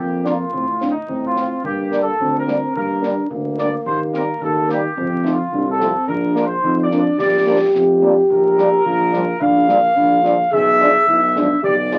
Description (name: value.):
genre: military-style march for wind band.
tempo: 108 BPM.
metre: 2/4.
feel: straight.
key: Bb major.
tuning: A4 = 441 Hz.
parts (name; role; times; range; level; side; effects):
dark trumpet section; melody; 0.0-12.0 s; Eb4 to F5; -21 LUFS; equal; none.
warm euphonium; second line; 0.0-12.0 s; Bb3 to G#4; -21 LUFS; equal; none.
warm tuba; bass; 0.0-12.0 s; Bb1 to A2; -25 LUFS; equal; none.
mellow French horn section; accompaniment; 0.2-12.0 s; F3 to F4; -22 LUFS; equal; none.
concert snare drum and concert bass drum; drums; 0.3-12.0 s; none; -38 LUFS; equal; none.
room: light reverb.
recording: very old 78 rpm record, vinyl crackle.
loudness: -17 LUFS.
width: mono.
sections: 0.0-12.0 A section.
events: none.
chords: 0.0 Bb; 0.5 F/A; 1.6 Gm; 3.9 Cm7/Eb; 5.0 F; 6.1 Bb; 8.3 Gm7/Bb; 10.5 Bdim7.